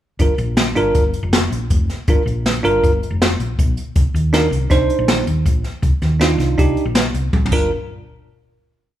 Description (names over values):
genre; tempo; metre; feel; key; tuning
progressive instrumental, band music in an uneven meter; 160 BPM; 5/4; straight; G minor; A4 = 440 Hz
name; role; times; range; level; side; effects
bell-like tine electric piano; accompaniment; 0.2-7.7 s; D4 to C5; -18 LUFS; right 2 dB; none
hollow-body short-scale fingered electric bass; bass; 0.2-7.7 s; F1 to Eb2; -20 LUFS; equal; none
jazz brush drum kit; drums; 0.2-7.6 s; crash cymbal, hi-hat, kick drum, snare drum, toms; -17 LUFS; equal; none
room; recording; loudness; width
moderate large studio reverb, RT60 1.2 s; band playing live in one room; -15 LUFS; side -12 dB against mid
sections
0.2-7.7 groove; 7.7-9.0 final hit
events
drum fill 7.3-7.7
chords
0.2 Gm7; 4.0 Cm7; 7.5 Gm7; 7.7 N.C.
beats
| 0.20 0.58 0.95 1.33 1.71 | 2.08 2.46 2.83 3.21 3.58 | 3.96 4.33 4.71 5.08 5.46 | 5.84 6.21 6.59 6.96 7.34